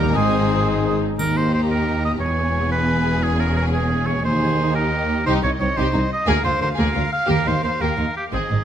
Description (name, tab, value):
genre	cinematic, heroic adventure film score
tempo	118 BPM (dotted quarters)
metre	6/8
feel	straight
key	unclear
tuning	A4 = 440 Hz
part	warm symphonic violin section	melody	0.0-8.6 s	Eb5 to Bb5	-32 LUFS	left 4 dB	none
part	clear clarinet	second line	0.0-1.0 s	G4 to Ab4	-32 LUFS	left 5 dB	none
part	clear oboe	second line	0.0-8.6 s	G4 to F5	-23 LUFS	right 1 dB	none
part	warm symphonic violin section	second line	0.0-8.6 s	Bb3 to Bb4	-28 LUFS	left 2 dB	none
part	warm symphonic viola section	accompaniment	0.0-8.6 s	G3 to Eb4	-28 LUFS	right 1 dB	none
part	clear trombone section	sustained chords	0.0-1.0 s	Eb3 to Ab3	-29 LUFS	right 2 dB	none
part	dark French horn section	sustained chords	0.0-1.0 s	Bb3 to Eb4	-29 LUFS	left 3 dB	none
part	concert harp	arpeggios	0.0-2.2 s	Ab2 to G4	-29 LUFS	left 12 dB	none
part	clear trumpet	stabs	0.0-1.0 s	Ab4 to Bb4	-28 LUFS	equal	none
part	rich symphonic cello section	bass	0.0-8.6 s	C2 to Ab2	-24 LUFS	equal	none
part	warm symphonic double bass section	bass	0.0-8.6 s	E1 to Eb2	-24 LUFS	right 1 dB	none
part	silver concert flute	second line	0.1-1.0 s	Eb6	-28 LUFS	equal	none
part	timpani	percussion	1.2-1.7, 7.3-7.8 s	Eb3	-30 LUFS	right 2 dB	none
part	triangle	percussion	1.2-1.8 s	none	-38 LUFS	left 2 dB	none
room	light reverb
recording	none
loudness	-18 LUFS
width	side -9 dB against mid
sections	0.0-1.2 A section; 1.2-8.6 B section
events	none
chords	0.1 Ab; 1.2 Eb; 2.2 E; 3.2 Dbm/Fb; 4.3 Ab/Eb; 5.3 Cm; 6.3 Bb7/D; 7.3 Eb